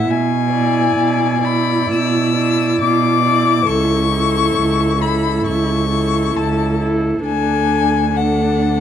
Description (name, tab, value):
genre	classical, slow romantic movement for string quartet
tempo	67 BPM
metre	4/4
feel	rubato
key	A major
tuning	A4 = 440 Hz
part	rich violin	melody	0.0-8.8 s	F#5 to E6	-19 LUFS	left 11 dB	none
part	dark violin	second line	0.0-8.8 s	A4 to D5	-24 LUFS	left 4 dB	none
part	warm viola	accompaniment	0.0-8.8 s	D4 to E4	-20 LUFS	right 2 dB	none
part	warm cello	bass	0.0-8.8 s	C#2 to B2	-18 LUFS	right 4 dB	none
room	moderate large studio reverb, RT60 1.4 s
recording	dark, warm production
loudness	-14 LUFS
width	side -9 dB against mid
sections	0.0-8.8 A section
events	none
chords	0.1 E7/B; 3.7 A/C#; 7.2 D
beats	| 0.09 0.97 1.92 2.82 | 3.68 4.57 5.46 6.37 | 7.25 8.14